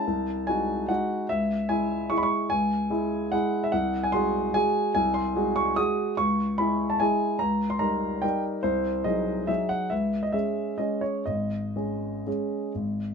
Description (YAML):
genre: classical, piano waltz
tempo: 118-157 BPM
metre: 3/4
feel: rubato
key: C# minor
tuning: A4 = 440 Hz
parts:
  - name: warm baby grand piano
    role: solo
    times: 0.0-13.1 s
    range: G#1 to D#6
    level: -24 LUFS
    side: equal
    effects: none
room: light reverb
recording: close, detailed microphones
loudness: -24 LUFS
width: side -6 dB against mid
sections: 0.0-13.1 A section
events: none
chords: 0.1 G#7/B#; 1.3 C#m; 3.7 G#7/B#; 6.2 C#m; 7.4 D#7/C#; 8.6 G#7/B#; 9.9 C#m; 11.3 G#sus4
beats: | 0.07 0.48 0.89 | 1.30 1.70 2.11 | 2.52 2.91 3.33 | 3.74 4.14 4.55 | 4.95 5.36 5.77 | 6.18 6.59 7.00 | 7.40 7.80 8.23 | 8.64 9.05 9.49 | 9.92 10.34 10.79 | 11.27 11.76 12.27 | 12.75